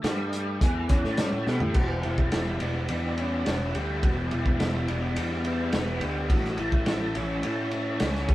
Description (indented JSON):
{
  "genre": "psychedelic rock",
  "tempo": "106 BPM",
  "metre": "4/4",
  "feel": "straight",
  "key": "E dorian",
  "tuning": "A4 = 445 Hz",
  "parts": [
    { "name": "percussive tonewheel organ", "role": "sustained chords", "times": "0.0-8.3 s", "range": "D3 to F#5", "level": "-41 LUFS", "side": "right 2 dB", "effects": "none" },
    { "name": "cranked stack guitar", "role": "riff", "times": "0.0-8.3 s", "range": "E2 to E4", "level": "-32 LUFS", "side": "equal", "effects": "overdrive, rotary speaker" },
    { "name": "fuzz picked electric bass", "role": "bass", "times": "0.0-8.3 s", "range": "E1 to B2", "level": "-30 LUFS", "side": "equal", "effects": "overdrive" },
    { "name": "crunchy breakbeat drum kit", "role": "drums", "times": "0.0-8.3 s", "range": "crash cymbal, hi-hat, kick drum, ride cymbal, snare drum, toms", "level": "-27 LUFS", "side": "equal", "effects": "none" },
    { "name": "overdriven combo organ", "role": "melody", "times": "0.9-8.3 s", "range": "B3 to G4", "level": "-33 LUFS", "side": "equal", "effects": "none" }
  ],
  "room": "moderate studio reverb, RT60 0.7 s",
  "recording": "band playing live in one room",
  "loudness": "-24 LUFS",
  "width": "side -16 dB against mid",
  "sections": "0.0-1.8 A section; 1.8-8.3 B section",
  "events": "drum fill 1.5",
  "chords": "0.0 D5; 1.8 Em; 6.3 A"
}